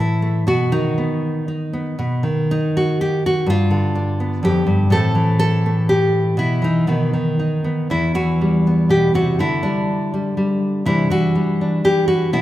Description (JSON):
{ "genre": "folk, solo fingerstyle acoustic guitar", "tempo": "122 BPM", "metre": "3/4", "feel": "rubato", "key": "E minor", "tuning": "A4 = 440 Hz", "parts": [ { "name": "nylon-string guitar", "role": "solo", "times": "0.0-12.4 s", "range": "E2 to A4", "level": "-16 LUFS", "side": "equal", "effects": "none" } ], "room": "wet recital hall reverb, RT60 1.7 s", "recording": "recorded in a church or concert hall", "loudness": "-16 LUFS", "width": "side -14 dB against mid", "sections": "0.0-7.9 A section; 7.9-12.4 B section", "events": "none", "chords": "0.5 B; 3.5 G7; 4.9 Am; 6.4 E5/B; 6.9 B; 7.9 Emadd9; 9.4 G/D; 10.9 Cadd9", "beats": "| 0.46 0.96 1.46 | 1.98 2.48 2.98 | 3.46 3.95 4.43 | 4.92 5.40 5.89 | 6.38 6.88 7.39 | 7.90 8.40 8.90 | 9.39 9.88 10.37 | 10.85 11.34 11.83 | 12.33" }